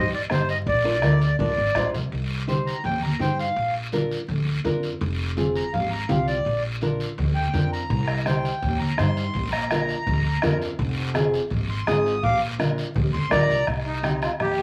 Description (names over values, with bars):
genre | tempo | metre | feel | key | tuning
latin, cumbia | 166 BPM | 4/4 | straight | C minor | A4 = 440 Hz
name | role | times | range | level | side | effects
accordion | melody | 0.0-14.6 s | Eb4 to Eb6 | -28 LUFS | equal | none
nylon-string guitar | accompaniment | 0.0-14.3 s | C4 to C5 | -30 LUFS | equal | none
upright bass | bass | 0.0-14.6 s | F1 to G2 | -29 LUFS | equal | none
bombo | percussion | 0.3-1.9, 7.9-14.6 s | none | -31 LUFS | equal | none
congas | percussion | 0.3-14.6 s | none | -31 LUFS | equal | none
guiro | percussion | 0.3-14.6 s | none | -39 LUFS | equal | none
room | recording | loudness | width
wet club reverb, RT60 0.5 s | vinyl crackle | -24 LUFS | mono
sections
0.0-2.1 A section; 2.1-13.7 B section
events
drum fill 1.4-2.1; accordion solo 2.1-13.7; nylon-string guitar fill 10.3-10.8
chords
0.0 Cm; 0.7 Bb; 2.1 Cm; 3.6 Bb; 5.0 Fm; 6.5 Bb; 7.9 Cm; 9.4 Bb; 10.8 Fm; 12.2 Bb; 13.7 Cm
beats
0.32 | 0.68 1.04 1.40 1.76 | 2.12 2.48 2.84 3.20 | 3.56 3.93 4.29 4.65 | 5.01 5.37 5.74 6.10 | 6.46 6.82 7.18 7.54 | 7.91 8.27 8.63 8.99 | 9.35 9.71 10.07 10.44 | 10.80 11.16 11.52 11.88 | 12.24 12.60 12.96 13.32 | 13.69 14.05 14.41